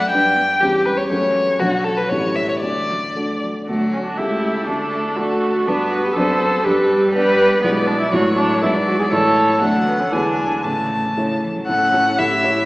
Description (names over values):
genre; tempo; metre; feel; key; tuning
quick classical-period movement for piano quartet; 121 BPM; 2/4; straight; D major, A major from 7.6 s; A4 = 439 Hz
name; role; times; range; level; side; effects
rich violin; melody; 0.0-12.7 s; F#4 to A5; -20 LUFS; left 1 dB; none
rich cello; second line; 0.0-12.7 s; C#3 to E4; -27 LUFS; right 1 dB; none
warm baby grand piano; accompaniment; 0.0-12.7 s; A1 to D5; -22 LUFS; equal; none
warm viola; accompaniment; 3.7-12.6 s; A3 to B4; -18 LUFS; right 1 dB; none
room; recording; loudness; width
wet church reverb, RT60 2.7 s; recorded in a church or concert hall, small speaker sound; -15 LUFS; side -20 dB against mid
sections
0.0-3.7 A section; 3.7-11.7 A section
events
none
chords
0.1 G; 0.6 C#dim/E; 1.1 F#m; 1.6 Bm; 2.1 A7; 2.6 D; 4.2 A7/C#; 4.7 D; 5.7 G; 6.2 D7/F#; 6.7 G; 7.6 E7/B; 8.1 A; 8.6 E7/G#; 9.1 A; 9.6 D; 10.1 E7; 10.6 A